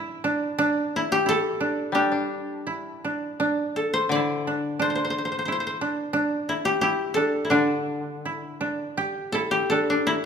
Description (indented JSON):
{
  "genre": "japanese traditional, Japanese chamber music",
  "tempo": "80-90 BPM",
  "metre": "2/4",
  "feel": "rubato",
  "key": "D suspended pentatonic",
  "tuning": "A4 = 440 Hz",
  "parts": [
    { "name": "koto", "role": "melody", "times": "0.0-10.3 s", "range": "D4 to D5", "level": "-24 LUFS", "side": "left 2 dB", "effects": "none" },
    { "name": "koto", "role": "second line", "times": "0.0-10.3 s", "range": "D4 to G4", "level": "-27 LUFS", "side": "right 2 dB", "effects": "none" },
    { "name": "koto", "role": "accompaniment", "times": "1.9-9.7 s", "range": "D3 to D4", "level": "-29 LUFS", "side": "left 4 dB", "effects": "none" }
  ],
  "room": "wet recital hall reverb, RT60 1.7 s",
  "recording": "minimal, uncompressed stereo recording",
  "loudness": "-23 LUFS",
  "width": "side -7 dB against mid",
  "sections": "0.0-9.0 A section; 9.0-10.3 B section",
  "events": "none",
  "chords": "none",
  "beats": "| 0.59 1.27 | 1.96 2.67 | 3.41 4.13 | 4.82 5.50 | 6.17 6.84 | 7.52 8.23 | 8.96 9.69"
}